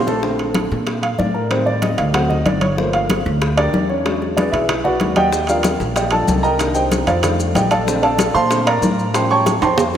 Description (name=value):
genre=Afro-Cuban jazz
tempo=188 BPM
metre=4/4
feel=straight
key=Bb major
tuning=A4 = 440 Hz
part: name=upright bass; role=bass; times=0.0-10.0 s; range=G1 to Bb2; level=-22 LUFS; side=equal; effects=none
part: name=warm baby grand piano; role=accompaniment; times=0.1-10.0 s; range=D3 to C#6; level=-17 LUFS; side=right 1 dB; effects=none
part: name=congas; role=percussion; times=0.1-10.0 s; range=none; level=-24 LUFS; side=left 2 dB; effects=none
part: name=maracas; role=percussion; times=0.1-0.2, 5.3-9.9 s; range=none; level=-32 LUFS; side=left 5 dB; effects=none
part: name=timbales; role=percussion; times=0.1-9.9 s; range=none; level=-25 LUFS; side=right 5 dB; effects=none
part: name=bongos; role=percussion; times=0.2-10.0 s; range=none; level=-25 LUFS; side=left 4 dB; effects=none
room=wet lush hall reverb, RT60 3.1 s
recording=dreamy mix soaked in reverb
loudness=-15 LUFS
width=side -9 dB against mid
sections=0.2-10.0 A section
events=drum fill 0.0, 9.6-10.0; grand piano solo 0.2-10.0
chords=0.2 Bbmaj9; 1.5 Am7b5; 2.1 D7; 2.8 Gm7; 4.1 E9; 5.3 Ebmaj9; 6.6 Cm7; 7.2 F13; 7.9 Bbmaj9; 9.1 A7alt